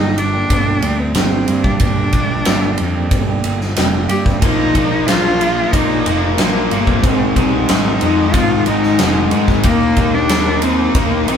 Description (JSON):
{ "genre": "quiet-loud alternative rock", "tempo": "92 BPM", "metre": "4/4", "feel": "straight", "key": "unclear", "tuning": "A4 = 440 Hz", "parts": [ { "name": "rich cello", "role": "melody", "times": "0.0-11.4 s", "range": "Bb3 to G4", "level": "-19 LUFS", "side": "equal", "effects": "none" }, { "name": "clean electric guitar", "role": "arpeggios", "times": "0.0-4.4 s", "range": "G2 to G4", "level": "-22 LUFS", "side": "right 6 dB", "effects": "none" }, { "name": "fuzz picked electric bass", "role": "bass", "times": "0.0-11.4 s", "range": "F1 to Ab2", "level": "-20 LUFS", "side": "equal", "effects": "overdrive" }, { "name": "huge arena drum kit", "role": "drums", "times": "0.2-11.4 s", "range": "kick drum, ride cymbal, snare drum", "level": "-17 LUFS", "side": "equal", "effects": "none" }, { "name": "fuzz guitar", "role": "riff", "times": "4.4-11.4 s", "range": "Ab2 to Eb4", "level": "-19 LUFS", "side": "left 9 dB", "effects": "distortion" }, { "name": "overdriven electric guitar", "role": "riff", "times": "4.4-11.4 s", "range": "Ab2 to Eb4", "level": "-21 LUFS", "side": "right 4 dB", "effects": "none" } ], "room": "moderate stone room reverb, RT60 1.1 s", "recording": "band playing live in one room", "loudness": "-12 LUFS", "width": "side -8 dB against mid", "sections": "0.0-11.4 A section", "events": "none", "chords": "0.0 Gm; 4.4 Bbsus4; 7.0 Ab; 9.6 Eb5" }